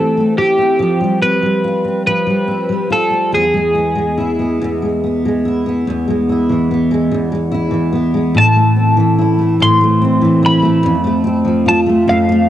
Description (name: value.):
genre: pop.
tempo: 48 BPM (dotted quarters).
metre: 6/8.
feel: straight.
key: A minor from 8.3 s.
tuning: A4 = 438 Hz.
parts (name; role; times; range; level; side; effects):
twelve-string electric guitar; melody; 0.0-12.5 s; G4 to C6; -16 LUFS; equal; cassette tape.
fingerpicked steel-string acoustic guitar; accompaniment; 0.0-12.5 s; E2 to G4; -13 LUFS; equal; double-tracked left and right, cassette tape.
room: light reverb, studio ambience.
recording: home recording on cassette.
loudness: -12 LUFS.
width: side -12 dB against mid.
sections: 0.0-5.9 A section; 5.9-8.3 B section; 8.3-12.5 C section.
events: none.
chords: 0.0 Am7/E; 0.8 Fsus2; 3.3 E; 8.3 Am; 10.8 F.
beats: | 0.80 2.06 | 3.32 4.60 | 5.86 7.11 | 8.35 9.60 | 10.84 12.09.